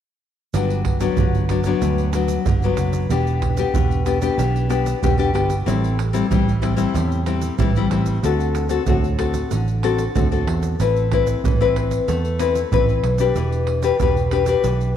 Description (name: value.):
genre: samba and choro.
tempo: 94 BPM.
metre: 4/4.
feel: straight.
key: G major.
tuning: A4 = 440 Hz.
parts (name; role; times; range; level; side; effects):
nylon-string guitar; accompaniment; 0.5-15.0 s; G2 to B4; -20 LUFS; left 7 dB; none.
vintage muted picked electric bass; bass; 0.5-15.0 s; E1 to E2; -21 LUFS; right 2 dB; none.
egg shaker, surdo and pandeiro; percussion; 0.5-15.0 s; none; -24 LUFS; right 4 dB; none.
room: moderate echo chamber reverb, RT60 1.8 s, studio reverb.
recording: 1960s-style stereo.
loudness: -17 LUFS.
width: side -9 dB against mid.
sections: 0.5-15.0 A section.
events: none.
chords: 0.5 Gmaj7; 3.1 Em7; 5.7 Am7; 8.2 D7; 10.8 Amadd9; 13.4 Em7.